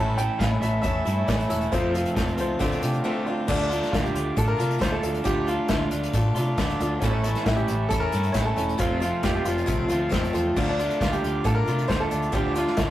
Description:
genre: folk rock and heartland rock.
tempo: 136 BPM.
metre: 4/4.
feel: straight.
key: D minor.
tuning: A4 = 438 Hz.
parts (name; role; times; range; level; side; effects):
bright concert grand piano; melody; 0.0-12.9 s; C#4 to A5; -29 LUFS; equal; none.
overdriven reed electric piano; accompaniment; 0.0-12.9 s; C4 to F5; -33 LUFS; right 2 dB; none.
picked swing-style acoustic guitar; accompaniment; 0.0-12.9 s; F2 to A4; -30 LUFS; left 1 dB; none.
accordion; sustained chords; 0.0-12.9 s; A4 to D6; -40 LUFS; right 2 dB; none.
electric guitar at the edge of break-up; riff; 0.0-12.9 s; F2 to F4; -29 LUFS; equal; warbly pitch drift.
hollow-body short-scale fingered electric bass; bass; 0.0-12.9 s; E1 to C3; -28 LUFS; equal; none.
unplugged drum kit; drums; 0.2-12.9 s; crash cymbal, hi-hat, kick drum, snare drum; -28 LUFS; equal; none.
dark upright piano; second line; 2.4-3.4 s; C4 to C5; -33 LUFS; left 2 dB; none.
room: moderate studio ambience, RT60 0.5 s.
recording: rough rehearsal-room recording, tube saturation.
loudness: -22 LUFS.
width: side -13 dB against mid.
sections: 0.0-3.5 A section; 3.5-12.9 A section.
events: break 3.0-3.5.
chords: 0.0 A; 1.7 F; 2.6 Dm7; 7.0 A; 8.8 F; 10.6 Dm.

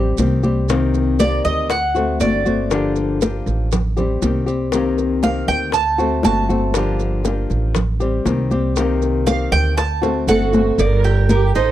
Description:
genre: latin, Cuban son and guajira.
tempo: 119 BPM.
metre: 4/4.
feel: straight.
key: G minor.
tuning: A4 = 440 Hz.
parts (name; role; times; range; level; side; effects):
flamenco guitar; accompaniment; 0.0-10.8 s; C3 to G4; -21 LUFS; left 4 dB; none.
upright bass; bass; 0.0-11.7 s; G1 to D2; -20 LUFS; right 1 dB; none.
bongos and cowbell; percussion; 0.2-11.6 s; none; -25 LUFS; left 6 dB; none.
congas; percussion; 0.2-11.7 s; none; -22 LUFS; equal; none.
maracas; percussion; 0.2-11.7 s; none; -33 LUFS; right 18 dB; none.
Cuban tres; arpeggios; 1.2-11.7 s; Eb4 to A5; -20 LUFS; right 3 dB; none.
nylon-string guitar; melody; 10.3-11.7 s; A4 to D5; -19 LUFS; right 4 dB; none.
dark chamber violin section; second line; 10.3-11.7 s; F#4 to Bb4; -24 LUFS; right 8 dB; slapback echo.
room: little or no reverb.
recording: dry, close 1970s-style studio recording.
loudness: -15 LUFS.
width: side -12 dB against mid.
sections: 0.0-10.8 A section.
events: Cuban tres solo 0.0-10.8; drum fill 10.0-10.8.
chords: 0.0 Am7b5; 0.7 Cm7; 1.7 D7; 2.7 Gm7; 3.7 Am7b5; 4.7 Cm7; 5.7 D7; 6.7 Gm7; 7.8 Am7b5; 8.8 Cm7; 9.8 D7; 10.8 Gm.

